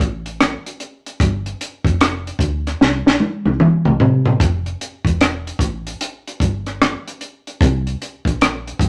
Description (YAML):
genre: R&B, neo-soul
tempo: 75 BPM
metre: 4/4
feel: swing 64% on 16ths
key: unclear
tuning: A4 = 441 Hz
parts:
  - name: solid FM bass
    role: bass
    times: 0.0-8.9 s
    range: E1 to C3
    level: -23 LUFS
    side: equal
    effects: none
  - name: compact cocktail drum kit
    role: drums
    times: 0.0-8.9 s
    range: hi-hat, kick drum, rim click, snare drum, toms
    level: -18 LUFS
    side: equal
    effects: none
room: moderate studio reverb, RT60 0.6 s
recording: none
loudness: -18 LUFS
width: mono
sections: 0.0-8.9 A section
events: drum fill 2.8-4.4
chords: none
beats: 0.40 | 1.20 2.00 2.80 3.60 | 4.40 5.20 6.00 6.80 | 7.60 8.40